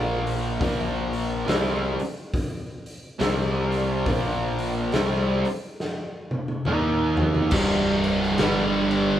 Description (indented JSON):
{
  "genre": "stoner and doom metal",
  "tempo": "69 BPM",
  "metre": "4/4",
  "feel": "swing 60% on 8ths",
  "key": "unclear",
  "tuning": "A4 = 443 Hz",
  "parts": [
    { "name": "fuzz guitar", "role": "riff", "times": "0.0-9.2 s", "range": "C2 to Eb4", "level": "-23 LUFS", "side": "right 1 dB", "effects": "distortion" },
    { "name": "growling picked electric bass", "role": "bass", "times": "0.0-9.2 s", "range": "C1 to Eb2", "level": "-31 LUFS", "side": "left 1 dB", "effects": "overdrive" },
    { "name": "raw garage drum kit", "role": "drums", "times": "0.3-9.1 s", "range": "crash cymbal, hi-hat, kick drum, snare drum, toms", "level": "-28 LUFS", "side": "equal", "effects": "none" },
    { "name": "heavy high-gain guitar", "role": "riff", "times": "7.5-9.2 s", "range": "C2 to G3", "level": "-27 LUFS", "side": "left 1 dB", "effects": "distortion" }
  ],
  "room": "moderate large studio reverb, RT60 1.1 s",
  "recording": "band playing live in one room",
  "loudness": "-22 LUFS",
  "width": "side -11 dB against mid",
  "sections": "0.0-7.5 A section; 7.5-9.2 B section",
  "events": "drum fill 5.8-7.5",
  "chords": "0.0 Bb5; 3.2 C5; 4.1 Bb5; 6.7 Eb5; 7.5 C5; 8.4 G5"
}